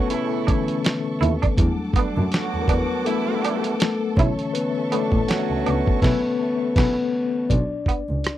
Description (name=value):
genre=R&B, neo-soul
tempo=81 BPM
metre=4/4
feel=swing 56% on 16ths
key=B minor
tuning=A4 = 440 Hz
part: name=mellow tine electric piano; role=accompaniment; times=0.0-8.4 s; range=B2 to D5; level=-23 LUFS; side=left 4 dB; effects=medium stereo tremolo
part: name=warm studio string section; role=sustained chords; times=0.0-7.5 s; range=A4 to D6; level=-33 LUFS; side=equal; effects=none
part: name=mellow horn section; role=stabs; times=0.0-7.0 s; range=A2 to F#4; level=-28 LUFS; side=right 11 dB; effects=none
part: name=dusty soul sampler-style drum kit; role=drums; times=0.1-8.4 s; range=crash cymbal, hi-hat, kick drum, rim click, snare drum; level=-22 LUFS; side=right 1 dB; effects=none
part: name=semi-hollow electric guitar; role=second line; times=0.5-8.0 s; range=B3 to E4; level=-26 LUFS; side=right 7 dB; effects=ensemble chorus
part: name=dark double bass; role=bass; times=1.2-8.2 s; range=A1 to F#2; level=-24 LUFS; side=right 1 dB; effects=none
room=little or no reverb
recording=dry, close 1970s-style studio recording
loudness=-19 LUFS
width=side -13 dB against mid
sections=0.0-7.5 A section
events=tine electric piano solo 0.0-7.5; band accent 6.0-7.5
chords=0.0 Bm11; 1.6 Em11; 4.2 Bm11; 7.5 N.C.